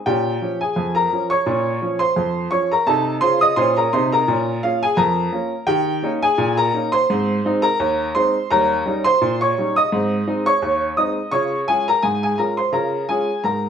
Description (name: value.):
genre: ragtime piano.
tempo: 85 BPM.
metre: 2/4.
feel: swing 55% on 16ths.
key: Ab major.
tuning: A4 = 436 Hz.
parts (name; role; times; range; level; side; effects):
clear upright piano; solo; 0.0-13.7 s; Eb2 to Eb6; -17 LUFS; equal; none.
room: moderate studio reverb, RT60 0.8 s.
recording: band playing live in one room.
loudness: -17 LUFS.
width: side -8 dB against mid.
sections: 0.0-13.7 A section.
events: none.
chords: 0.1 Bbm; 2.9 F7/C; 4.3 Bbm; 5.7 Eb7; 7.1 Ab; 8.5 Eb7; 9.9 Ab; 11.3 Db.